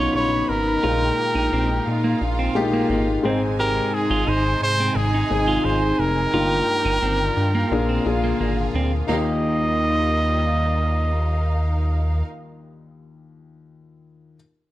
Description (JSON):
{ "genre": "piano-driven pop", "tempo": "87 BPM", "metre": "4/4", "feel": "straight", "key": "Eb major", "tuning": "A4 = 440 Hz", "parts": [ { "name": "clear trumpet", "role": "melody", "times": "0.0-12.2 s", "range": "Ab4 to Eb5", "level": "-24 LUFS", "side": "right 1 dB", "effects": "none" }, { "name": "warm symphonic violin section", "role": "second line", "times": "0.0-12.2 s", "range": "Ab3 to C#6", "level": "-31 LUFS", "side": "right 2 dB", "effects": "none" }, { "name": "warm grand piano", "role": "accompaniment", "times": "0.0-14.4 s", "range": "Eb2 to C5", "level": "-25 LUFS", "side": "left 3 dB", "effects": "none" }, { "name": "lush unison pad", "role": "sustained chords", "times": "0.0-12.2 s", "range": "Bb2 to Ab4", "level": "-31 LUFS", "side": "equal", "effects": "chorus, phaser" }, { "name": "clean electric guitar", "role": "riff", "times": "0.0-11.1 s", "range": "Bb3 to G4", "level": "-27 LUFS", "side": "right 3 dB", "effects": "none" }, { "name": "chorused synth bass", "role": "bass", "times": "0.0-12.2 s", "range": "F1 to Bb2", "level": "-23 LUFS", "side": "equal", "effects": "none" } ], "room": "moderate large studio reverb, RT60 1.1 s, small room ambience", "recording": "none", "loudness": "-18 LUFS", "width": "side -15 dB against mid", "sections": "0.0-9.1 A section; 9.1-11.8 B section", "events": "none", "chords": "0.0 Badd9; 0.8 Bb7sus4; 3.2 Ab; 6.3 Ebadd9/G; 7.7 Bb7; 9.1 Ebadd9" }